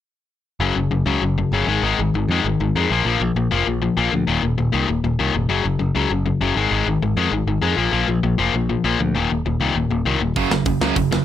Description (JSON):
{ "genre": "punk rock", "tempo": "197 BPM", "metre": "4/4", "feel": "straight", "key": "unclear", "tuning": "A4 = 440 Hz", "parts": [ { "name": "cranked stack guitar", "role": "riff", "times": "0.6-11.2 s", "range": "Eb2 to Bb3", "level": "-19 LUFS", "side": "left 5 dB", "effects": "overdrive" }, { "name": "modern bright picked electric bass", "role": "bass", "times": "0.6-11.2 s", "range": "Eb1 to F2", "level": "-23 LUFS", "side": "right 2 dB", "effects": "none" }, { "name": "crunchy overdriven guitar", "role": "riff", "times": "10.4-11.2 s", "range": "Gb2 to Gb3", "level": "-21 LUFS", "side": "right 13 dB", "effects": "none" }, { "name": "tight metal drum kit", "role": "drums", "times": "10.4-11.2 s", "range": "hi-hat, kick drum, snare drum", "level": "-22 LUFS", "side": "right 1 dB", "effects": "none" } ], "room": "little or no reverb", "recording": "none", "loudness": "-17 LUFS", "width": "side -11 dB against mid", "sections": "0.6-11.2 A section", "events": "none", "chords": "0.6 Gb5; 1.7 Ab5; 2.9 Bb5; 4.3 Eb5; 5.5 Gb5; 6.6 Ab5; 7.8 Bb5; 9.1 Eb5; 10.4 Gb5" }